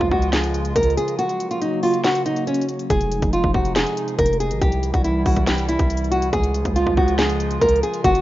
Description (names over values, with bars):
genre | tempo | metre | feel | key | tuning
hip hop, trap | 140 BPM | 4/4 | half-time | unclear | A4 = 440 Hz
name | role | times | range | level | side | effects
nylon-string guitar | melody | 0.0-8.2 s | Db4 to Bb4 | -20 LUFS | equal | low-pass filter, ping-pong delay
hollow soft pad | sustained chords | 0.0-8.2 s | C3 to Gb4 | -26 LUFS | equal | chorus
distorted 808-style bass | bass | 0.0-8.2 s | F1 to Db2 | -23 LUFS | equal | distortion
trap drum kit | drums | 0.0-8.2 s | hi-hat, kick drum, snare drum | -23 LUFS | equal | none
room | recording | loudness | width
light reverb | rough home demo mix, vinyl crackle, nothing above 7.5 kHz | -17 LUFS | side -15 dB against mid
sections
0.0-8.2 A section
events
kick muted 1.2-2.9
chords
0.0 Db; 1.2 Gb; 2.9 Fm7; 4.6 C; 6.3 Db